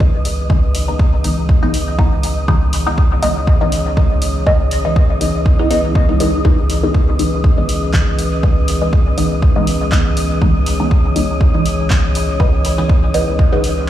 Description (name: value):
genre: dub techno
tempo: 121 BPM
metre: 4/4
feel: swing 55% on 16ths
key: C# minor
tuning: A4 = 439 Hz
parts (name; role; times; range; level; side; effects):
- dark analog pad; sustained chords; 0.0-13.9 s; E3 to C#5; -24 LUFS; left 1 dB; chorus, sidechain pumping
- filtered dub chord stab; stabs; 0.0-13.6 s; E3 to D#4; -20 LUFS; equal; phaser, cassette tape, sidechain pumping, dub echo
- soft dub sub bass; bass; 0.0-13.9 s; C#2; -18 LUFS; equal; sidechain pumping
- electronic kick drum; drums; 0.0-13.5 s; none; -13 LUFS; equal; overdrive
- wind-like tuned noise texture; texture; 0.0-13.9 s; D#5; -26 LUFS; right 1 dB; built-in reverb, sidechain pumping
- punchy analog drum machine; drums; 0.3-13.7 s; handclaps, hi-hat; -26 LUFS; equal; none
room: little or no reverb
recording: played on a big sound system in a bare room, large studio reverb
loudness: -12 LUFS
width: side -12 dB against mid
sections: 0.0-13.9 A section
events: none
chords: 0.0 C#m7